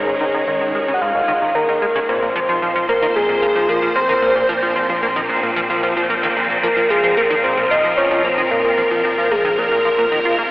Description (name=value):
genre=ambient, sequencer-driven space music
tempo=112 BPM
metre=4/4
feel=straight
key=Bb minor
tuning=A4 = 437 Hz
part: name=soft octave-layered synth lead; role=melody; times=0.0-10.4 s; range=Ab4 to Gb5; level=-18 LUFS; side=equal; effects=chorus, tape echo
part: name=phased string machine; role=sustained chords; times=0.0-10.5 s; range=Bb2 to C5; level=-20 LUFS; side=equal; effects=ensemble chorus, phaser
part: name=plucky analog bass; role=riff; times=0.0-10.4 s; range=Ab2 to F4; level=-20 LUFS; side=equal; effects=analog chorus, tape echo
part: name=analog drone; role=bass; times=0.0-10.5 s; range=Ab1 to Bb1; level=-38 LUFS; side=equal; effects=chorus
room=wet lush hall reverb, RT60 2.7 s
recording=dreamy mix soaked in reverb, cassette tape, telephone sound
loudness=-14 LUFS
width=side -20 dB against mid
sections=0.0-10.5 A section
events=none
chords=0.0 Absus4; 2.1 Bbsus2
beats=0.47 1.01 1.55 | 2.08 2.62 3.15 3.69 | 4.22 4.76 5.30 5.83 | 6.37 6.90 7.44 7.97 | 8.51 9.05 9.58 10.12